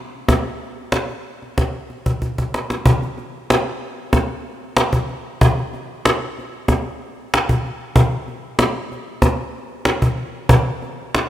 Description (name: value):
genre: folk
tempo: 94 BPM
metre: 4/4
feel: straight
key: none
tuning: none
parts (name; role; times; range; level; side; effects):
- cajon; percussion; 0.3-11.3 s; none; -17 LUFS; equal; none
room: light reverb, small room ambience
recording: rough home demo mix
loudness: -18 LUFS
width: side -13 dB against mid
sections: 0.0-2.8 A section; 2.8-11.3 B section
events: drum fill 2.2-2.8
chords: none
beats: | 0.28 0.92 1.56 2.20 | 2.85 3.48 4.12 4.76 | 5.40 6.04 6.68 7.32 | 7.96 8.60 9.23 9.87 | 10.51 11.15